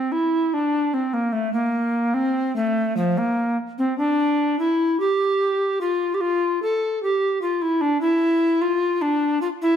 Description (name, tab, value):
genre	classical, baroque-style fantasia for unaccompanied recorder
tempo	74 BPM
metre	4/4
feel	rubato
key	F major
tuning	A4 = 440 Hz
part	bright bass recorder	solo	0.0-9.8 s	F3 to A4	-19 LUFS	equal	none
room	wet stone room reverb, RT60 1.2 s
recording	heard from further back in the room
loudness	-19 LUFS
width	side -9 dB against mid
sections	0.0-9.8 A section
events	none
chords	none